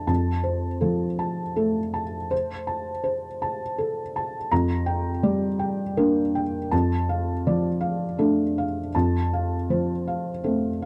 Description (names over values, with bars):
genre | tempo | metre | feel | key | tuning
neoclassical minimalist piano | 81 BPM | 3/4 | rubato | F major | A4 = 440 Hz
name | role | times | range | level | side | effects
felt-muted upright piano | solo | 0.0-10.9 s | F2 to Bb5 | -25 LUFS | equal | none
room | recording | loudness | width
light reverb | dry, close 1970s-style studio recording | -25 LUFS | mono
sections
0.0-10.9 A section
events
none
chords
0.1 F; 4.5 Gm/F; 6.7 Dm/F; 8.9 F